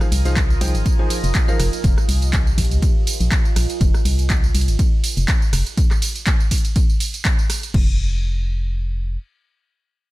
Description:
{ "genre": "piano house", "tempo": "122 BPM", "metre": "4/4", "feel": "swing 55% on 16ths", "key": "F minor", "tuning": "A4 = 440 Hz", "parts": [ { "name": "clear upright piano", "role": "riff", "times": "0.0-1.6 s", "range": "F3 to Ab5", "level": "-28 LUFS", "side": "left 1 dB", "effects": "sidechain pumping, digital delay" }, { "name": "punchy analog drum machine", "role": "drums", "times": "0.0-7.9 s", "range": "crash cymbal, handclaps, hi-hat, ride cymbal, rim click, tambourine", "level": "-25 LUFS", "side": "right 2 dB", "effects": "none" }, { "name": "deep dark ambient pad", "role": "texture", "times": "0.0-3.8 s", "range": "F4 to Ab5", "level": "-30 LUFS", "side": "right 5 dB", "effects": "chorus, built-in reverb, sidechain pumping" }, { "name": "organ-like FM bass", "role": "bass", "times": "0.1-9.2 s", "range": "F1 to Db2", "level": "-19 LUFS", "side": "equal", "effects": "sidechain pumping" }, { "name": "electronic kick drum", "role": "drums", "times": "0.4-7.8 s", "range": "none", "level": "-18 LUFS", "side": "equal", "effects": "none" }, { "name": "vibraphone with hard mallets", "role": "melody", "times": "1.5-1.6 s", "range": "Bb4", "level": "-34 LUFS", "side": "right 2 dB", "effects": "digital delay" } ], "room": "digital ambience", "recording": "none", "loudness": "-16 LUFS", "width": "side -18 dB against mid", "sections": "0.0-7.7 A section; 7.7-10.1 B section", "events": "drop 0.0-7.7", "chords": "0.0 Fm7; 1.8 F7; 2.6 Bb7(no3); 3.8 F5; 5.8 N.C." }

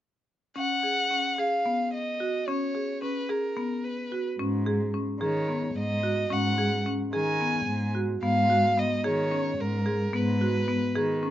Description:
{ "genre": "contemporary instrumental, chamber music in an uneven meter", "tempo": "219 BPM (eighths)", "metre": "7/8", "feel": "straight", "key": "G# dorian", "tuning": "A4 = 440 Hz", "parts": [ { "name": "dark violin", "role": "melody", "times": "0.6-11.2 s", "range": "A#4 to G#5", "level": "-28 LUFS", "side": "equal", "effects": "none" }, { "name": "marimba with hard mallets", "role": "arpeggios", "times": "0.6-11.3 s", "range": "B3 to G#4", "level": "-29 LUFS", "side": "left 1 dB", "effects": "none" }, { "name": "dark cello", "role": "bass", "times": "4.4-11.3 s", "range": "G#2 to D#3", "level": "-29 LUFS", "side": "equal", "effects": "none" } ], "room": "light reverb", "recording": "nothing above 7.6 kHz", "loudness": "-25 LUFS", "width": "side -12 dB against mid", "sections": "0.6-8.2 A section; 8.2-11.3 B section", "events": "none", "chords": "0.6 G#m11" }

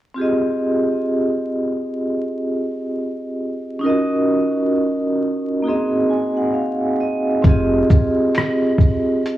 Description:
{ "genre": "lo-fi hip hop", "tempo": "66 BPM", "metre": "4/4", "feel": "swing 62% on 16ths", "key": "F minor", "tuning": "A4 = 440 Hz", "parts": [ { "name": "vibraphone with medium hard mallets", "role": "accompaniment", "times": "0.1-9.4 s", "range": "Bb3 to Ab5", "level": "-18 LUFS", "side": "right 1 dB", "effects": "low-pass filter" }, { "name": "saturated sub bass", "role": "bass", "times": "7.4-7.8 s", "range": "F1", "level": "-22 LUFS", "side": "equal", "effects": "none" }, { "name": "lo-fi sampler-style drum kit", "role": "drums", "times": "7.4-9.4 s", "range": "hi-hat, kick drum, rim click, shaker", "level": "-14 LUFS", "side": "equal", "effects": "none" }, { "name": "finger snaps", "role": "percussion", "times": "8.4-8.6 s", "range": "none", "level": "-36 LUFS", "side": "left 2 dB", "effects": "none" } ], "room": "light reverb", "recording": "worn, warbling old tape, cassette tape, vinyl crackle, warbly pitch drift, small room ambience", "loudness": "-17 LUFS", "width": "side -14 dB against mid", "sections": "0.2-7.4 A section; 7.4-9.4 B section", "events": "vibraphone fill 5.6-7.4", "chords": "0.2 Fm9; 3.8 Ebm7; 5.6 Ab7; 7.4 Fm9" }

